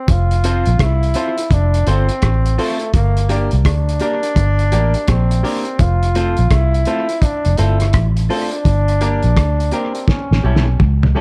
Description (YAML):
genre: roots reggae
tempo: 84 BPM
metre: 4/4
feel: swing 63% on 16ths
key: unclear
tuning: A4 = 440 Hz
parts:
  - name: bright trombone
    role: melody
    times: 0.0-10.8 s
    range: A3 to F4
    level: -24 LUFS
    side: equal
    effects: dub echo
  - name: vintage muted fingered electric bass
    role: bass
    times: 0.1-11.1 s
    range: F1 to D2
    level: -17 LUFS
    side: equal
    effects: none
  - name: cloth-damped thuddy drum kit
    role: drums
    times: 0.1-11.2 s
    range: hi-hat, kick drum, rim click, snare drum, toms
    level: -21 LUFS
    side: equal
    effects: none
  - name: semi-hollow electric guitar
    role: accompaniment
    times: 0.4-11.2 s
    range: G3 to C5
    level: -28 LUFS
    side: equal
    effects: dub echo
  - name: warm upright piano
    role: stabs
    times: 0.4-11.2 s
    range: F4 to D5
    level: -29 LUFS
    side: equal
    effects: none
room: small room ambience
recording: dark, warm production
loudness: -16 LUFS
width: mono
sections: 0.1-11.2 A section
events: drum fill 10.1-11.2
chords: 0.1 F; 2.9 Gm; 5.8 F; 8.7 Gm; 10.1 A7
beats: | 0.08 0.80 1.51 2.22 | 2.94 3.65 4.37 5.08 | 5.79 6.51 7.22 7.94 | 8.65 9.37 10.08 10.79